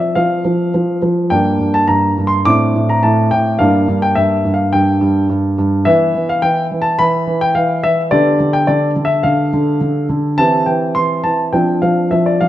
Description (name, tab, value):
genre	classical-period piano sonatina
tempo	106 BPM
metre	4/4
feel	straight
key	unclear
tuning	A4 = 440 Hz
part	warm baby grand piano	solo	0.0-12.5 s	G2 to D6	-12 LUFS	equal	none
room	moderate recital hall reverb, RT60 1.5 s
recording	dark, warm production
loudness	-12 LUFS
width	side -13 dB against mid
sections	0.0-12.5 A section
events	none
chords	0.0 F5; 1.3 Gm; 2.5 D5/A; 3.6 Gm; 5.9 E5; 8.1 G7/D; 10.4 C/E; 11.5 Dm7/F